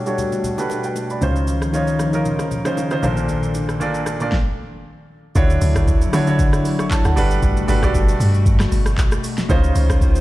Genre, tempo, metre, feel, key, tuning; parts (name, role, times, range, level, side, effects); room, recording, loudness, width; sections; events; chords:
amapiano; 116 BPM; 4/4; swing 55% on 16ths; A4 = 440 Hz
warm grand piano; accompaniment; 0.0-10.2 s; Bb2 to C#6; -22 LUFS; right 2 dB; low-pass filter
hollow soft pad; sustained chords; 0.0-10.2 s; B2 to B#4; -25 LUFS; left 3 dB; chorus, sidechain pumping, low-pass filter
deep house drum kit; drums; 0.1-10.2 s; handclaps, hi-hat, kick drum, rim click, shaker, snare drum; -20 LUFS; equal
congas and bongos; percussion; 0.2-4.2 s; -31 LUFS; left 3 dB
muted double bass; bass; 1.2-4.3 s; Bb1 to C#2; -24 LUFS; equal
deep log drum bass; bass; 5.4-10.2 s; G1 to D3; -17 LUFS; equal
digital ambience; played on a big sound system in a bare room, stone room reverb; -16 LUFS; side -16 dB against mid
0.0-5.4 A section; 5.4-10.2 B section
filter sweep 0.0-5.4; stop 4.3-5.4; drop 5.4-10.2
0.0 Gmaj9; 1.2 C#maj9; 3.0 Bbmaj9; 5.4 Dmaj9; 7.2 Gmaj9; 9.5 C#maj9